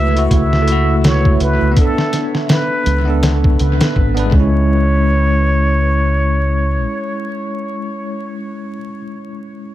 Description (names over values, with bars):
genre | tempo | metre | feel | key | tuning
trip hop | 82 BPM | 4/4 | swing 59% on 16ths | C# phrygian | A4 = 440 Hz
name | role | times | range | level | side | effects
trumpet with plunger mute | melody | 0.0-8.4 s | A4 to E5 | -21 LUFS | equal | tape echo
bell-like tine electric piano | accompaniment | 0.0-9.7 s | G#3 to B4 | -20 LUFS | equal | medium stereo tremolo, harmonic tremolo, tape echo
warbly tape-like pad | sustained chords | 0.0-4.3 s | E5 | -33 LUFS | right 5 dB | none
deep dub fingered electric bass | bass | 0.0-6.8 s | G#1 to C#2 | -15 LUFS | equal | tube saturation
backwards swelling texture | texture | 0.0-4.7 s | B4 | -34 LUFS | right 3 dB | none
trip hop sampler-style drum kit | drums | 0.2-4.5 s | hi-hat, kick drum, snare drum | -15 LUFS | equal | analog delay
room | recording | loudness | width
digital ambience | echo-heavy mix, vinyl crackle | -12 LUFS | side -14 dB against mid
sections
0.0-4.7 A section; 4.7-7.6 B section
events
none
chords
0.0 F#m7/C#; 1.8 Bm7; 4.3 C#m